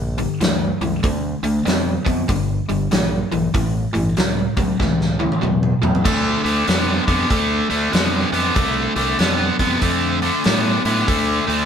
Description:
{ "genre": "blues rock power trio and southern rock", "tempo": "96 BPM", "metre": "4/4", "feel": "swing 64% on 8ths", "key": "D minor", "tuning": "A4 = 440 Hz", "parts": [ { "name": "biting overdriven guitar", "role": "riff", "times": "0.0-11.7 s", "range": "G2 to B3", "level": "-19 LUFS", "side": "equal", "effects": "none" }, { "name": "growling fingered electric bass", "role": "bass", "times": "0.0-11.7 s", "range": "G1 to A2", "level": "-24 LUFS", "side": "equal", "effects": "overdrive" }, { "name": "big rock drum kit", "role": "drums", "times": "0.2-11.6 s", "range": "crash cymbal, hi-hat, kick drum, snare drum, toms", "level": "-22 LUFS", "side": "equal", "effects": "none" } ], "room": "moderate studio reverb, RT60 0.9 s", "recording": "band playing live in one room", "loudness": "-16 LUFS", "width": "side -8 dB against mid", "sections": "0.0-6.1 A section; 6.1-11.7 A section", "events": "drum fill 4.8-6.1", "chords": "0.0 Gm; 1.0 Dm; 2.3 Gm; 3.5 A; 6.1 Dm" }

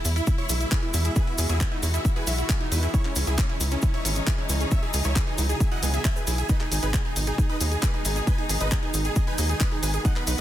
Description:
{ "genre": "uplifting trance", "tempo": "135 BPM", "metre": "4/4", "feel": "straight", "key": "unclear", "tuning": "A4 = 439 Hz", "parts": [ { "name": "rich studio string section", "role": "sustained chords", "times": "0.0-10.4 s", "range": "B2 to F#4", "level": "-35 LUFS", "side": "left 2 dB", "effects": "sidechain pumping" }, { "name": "wide unison pluck", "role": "arpeggios", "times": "0.0-10.4 s", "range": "B3 to E5", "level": "-34 LUFS", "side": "right 5 dB", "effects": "sidechain pumping, tape echo" }, { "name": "tight sequencer bass", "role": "bass", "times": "0.1-10.4 s", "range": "G#1 to E2", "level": "-25 LUFS", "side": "equal", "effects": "sidechain pumping" }, { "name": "house drum kit", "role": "drums", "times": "0.1-10.4 s", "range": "handclaps, hi-hat", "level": "-31 LUFS", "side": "equal", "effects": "none" }, { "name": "cabasa", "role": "percussion", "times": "0.1-10.4 s", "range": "none", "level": "-33 LUFS", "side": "left 2 dB", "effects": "none" }, { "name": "big supersaw lead", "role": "melody", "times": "0.2-10.4 s", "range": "C#4 to G#5", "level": "-32 LUFS", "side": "equal", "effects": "sidechain pumping, digital delay" }, { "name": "electronic kick drum", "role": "drums", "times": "0.3-10.1 s", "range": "none", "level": "-24 LUFS", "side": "equal", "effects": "none" } ], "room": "little or no reverb", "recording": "dense, heavily limited modern master", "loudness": "-22 LUFS", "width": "side -12 dB against mid", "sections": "0.0-10.4 A section", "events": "none", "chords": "0.0 E; 2.9 C#madd9; 6.5 G#m" }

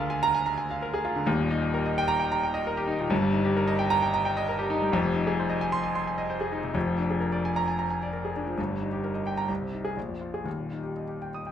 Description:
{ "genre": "classical, virtuoso piano study", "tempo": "131 BPM", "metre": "4/4", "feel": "rubato", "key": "Eb major", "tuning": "A4 = 440 Hz", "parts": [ { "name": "clear grand piano", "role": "solo", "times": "0.0-11.5 s", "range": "Eb1 to Eb6", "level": "-25 LUFS", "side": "equal", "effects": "none" } ], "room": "light reverb", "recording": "close, detailed microphones", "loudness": "-25 LUFS", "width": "side -9 dB against mid", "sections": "0.0-11.5 A section", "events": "none", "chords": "0.0 Bb7/D; 1.3 Eb; 3.1 Eb/G; 4.9 Fm7; 6.8 Bb7/F; 8.6 Eb/G; 9.5 Ab/C; 10.0 Bb5; 10.5 Eb" }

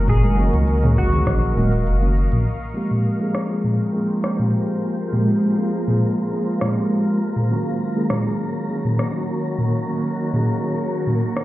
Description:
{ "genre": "sunset chillout", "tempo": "101 BPM", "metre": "4/4", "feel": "straight", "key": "Ab major", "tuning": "A4 = 438 Hz", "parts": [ { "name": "semi-hollow electric guitar", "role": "melody", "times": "0.0-2.1 s", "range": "Gb4 to Ab4", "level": "-28 LUFS", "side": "equal", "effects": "analog chorus, digital delay" }, { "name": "mellow tine electric piano", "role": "accompaniment", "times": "0.0-11.2 s", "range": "Eb3 to Ab4", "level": "-22 LUFS", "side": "equal", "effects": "auto-pan, tape echo" }, { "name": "shimmering ambient pad", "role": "sustained chords", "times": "0.0-11.4 s", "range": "Eb3 to Db6", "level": "-26 LUFS", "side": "equal", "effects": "chorus, built-in reverb, phaser" }, { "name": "warm sub bass", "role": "bass", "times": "0.0-2.4 s", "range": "Eb1 to Db2", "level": "-18 LUFS", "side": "equal", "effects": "none" }, { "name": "electronic kick drum", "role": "drums", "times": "0.1-1.4 s", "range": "none", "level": "-24 LUFS", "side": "equal", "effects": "none" }, { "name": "smooth R&B drum kit", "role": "drums", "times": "0.1-11.4 s", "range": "crash cymbal, hi-hat, rim click, shaker, toms", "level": "-23 LUFS", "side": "equal", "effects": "low-pass filter on hats, low-pass filter on perc, low-pass filter on toms, low-pass filter on snare, low-pass filter on cymbals" }, { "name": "congas", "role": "percussion", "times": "0.2-1.7 s", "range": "none", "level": "-27 LUFS", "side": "right 2 dB", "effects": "none" }, { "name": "wind-like tuned noise texture", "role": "texture", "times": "3.1-11.4 s", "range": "Bb4 to Bb5", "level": "-35 LUFS", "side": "equal", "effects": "built-in reverb" } ], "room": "moderate recital hall reverb, RT60 1.6 s", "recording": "heard muffled through a wall, stone room reverb, EQ", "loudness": "-18 LUFS", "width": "side -16 dB against mid", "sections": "0.0-2.5 A section; 2.5-11.4 B section", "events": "filter sweep on tine electric piano 0.0-2.5; filter sweep on ambient pad 2.5-11.4", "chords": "0.0 Gb6; 2.5 Abmaj13; 7.2 Gb6" }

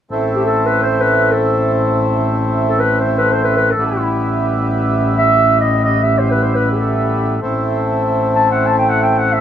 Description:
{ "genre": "klezmer", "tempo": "free time", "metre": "none", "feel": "none", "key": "A minor", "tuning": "A4 = 440 Hz", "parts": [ { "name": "mellow accordion", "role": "accompaniment", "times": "0.1-9.4 s", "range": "G3 to E4", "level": "-17 LUFS", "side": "right 1 dB", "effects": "none" }, { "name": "mellow tuba", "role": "bass", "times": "0.1-9.4 s", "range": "A1", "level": "-18 LUFS", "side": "equal", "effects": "none" }, { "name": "dark clarinet", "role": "melody", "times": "0.4-9.4 s", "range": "E4 to A5", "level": "-16 LUFS", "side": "equal", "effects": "none" } ], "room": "moderate studio ambience, RT60 0.5 s", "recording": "band playing live in one room", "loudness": "-13 LUFS", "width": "side -9 dB against mid", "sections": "0.1-9.4 A section", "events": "none", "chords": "0.1 Am; 3.8 Em/A; 7.4 Am" }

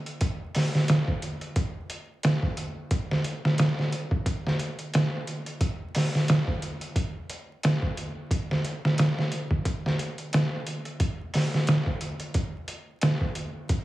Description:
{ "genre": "trip hop", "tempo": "89 BPM", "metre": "4/4", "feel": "swing 56% on 16ths", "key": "none", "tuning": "none", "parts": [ { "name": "trip hop sampler-style drum kit", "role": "drums", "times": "0.1-13.8 s", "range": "hi-hat, kick drum, snare drum", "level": "-25 LUFS", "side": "equal", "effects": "overdrive" } ], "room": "moderate plate reverb, RT60 2.2 s", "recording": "heavily compressed radio sound, multiband compression, vinyl crackle, studio ambience", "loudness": "-25 LUFS", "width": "side -16 dB against mid", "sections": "0.0-13.8 A section", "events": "none", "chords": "none" }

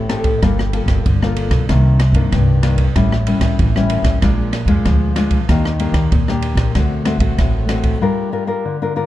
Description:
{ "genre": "samba and choro", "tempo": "95 BPM", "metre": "4/4", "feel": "straight", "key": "G minor", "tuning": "A4 = 440 Hz", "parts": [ { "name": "nylon-string guitar", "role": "accompaniment", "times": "0.0-9.1 s", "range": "G2 to Bb4", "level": "-18 LUFS", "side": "left 3 dB", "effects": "none" }, { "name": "upright bass", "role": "bass", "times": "0.0-7.9 s", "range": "G1 to G2", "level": "-17 LUFS", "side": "right 1 dB", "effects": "none" }, { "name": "open jazz drum kit", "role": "drums", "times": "0.1-8.0 s", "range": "kick drum, ride cymbal, rim click", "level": "-18 LUFS", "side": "equal", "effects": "none" } ], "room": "light reverb", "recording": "dark, warm production", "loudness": "-13 LUFS", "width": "side -14 dB against mid", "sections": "0.0-9.1 A section", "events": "break 8.0-9.1", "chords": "0.4 Gm9; 1.7 Cm9; 3.0 A7; 4.2 Bb7; 5.5 Ebmaj7; 6.8 D7; 8.0 Gm7" }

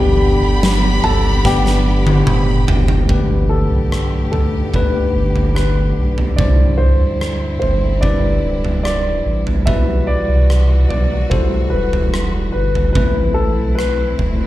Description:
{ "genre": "pop ballad", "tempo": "73 BPM", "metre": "4/4", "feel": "straight", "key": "G major", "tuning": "A4 = 440 Hz", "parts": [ { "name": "warm baby grand piano", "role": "melody", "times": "0.0-14.5 s", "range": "G4 to A5", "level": "-22 LUFS", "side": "left 1 dB", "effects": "slapback echo, tape echo" }, { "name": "warm studio violin section", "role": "second line", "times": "0.0-3.1 s", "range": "G5 to B5", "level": "-24 LUFS", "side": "right 1 dB", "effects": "slapback echo" }, { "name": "barky tine electric piano", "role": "accompaniment", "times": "0.0-14.5 s", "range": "G2 to C5", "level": "-21 LUFS", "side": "left 2 dB", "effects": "auto-pan, slapback echo" }, { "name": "clear studio string section", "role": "sustained chords", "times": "0.0-14.5 s", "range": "D3 to G4", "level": "-27 LUFS", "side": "equal", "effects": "none" }, { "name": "warm sub bass", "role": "bass", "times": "0.0-14.5 s", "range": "D1 to D2", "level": "-17 LUFS", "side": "equal", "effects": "none" }, { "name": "huge arena drum kit", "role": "drums", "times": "0.6-14.4 s", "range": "kick drum, rim click, snare drum, toms", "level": "-20 LUFS", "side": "equal", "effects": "none" } ], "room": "light reverb", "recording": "live gig heard through the venue's PA, recital hall reverb", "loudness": "-13 LUFS", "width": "side -15 dB against mid", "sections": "0.0-3.1 A section; 3.1-14.5 B section", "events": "drum fill 1.4-3.1", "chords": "0.0 G; 3.1 Gadd9; 6.4 Cadd9; 9.7 Emadd9/B; 13.0 Amadd9" }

